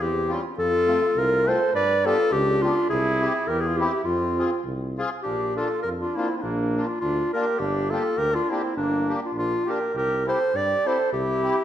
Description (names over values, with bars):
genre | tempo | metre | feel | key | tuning
alpine folk, alpine dance band | 102 BPM | 2/4 | swing 54% on 8ths | unclear | A4 = 439 Hz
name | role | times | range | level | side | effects
mellow clarinet | melody | 0.0-11.6 s | D4 to D5 | -23 LUFS | left 1 dB | none
mellow trumpet | second line | 0.0-11.6 s | Bb3 to B4 | -30 LUFS | right 5 dB | none
warm tuba | bass | 0.0-11.5 s | G1 to G2 | -30 LUFS | equal | none
accordion | accompaniment | 0.3-11.6 s | G3 to Ab4 | -31 LUFS | left 2 dB | light tremolo tuning
room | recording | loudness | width
moderate recital hall reverb, RT60 1.6 s | minimal, uncompressed stereo recording | -21 LUFS | side -11 dB against mid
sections
0.0-5.2 A section; 5.2-11.6 B section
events
none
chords
0.0 Csus4; 0.6 F; 1.7 G; 2.9 C; 4.1 Fm; 5.2 Bb; 7.6 Gm; 9.9 C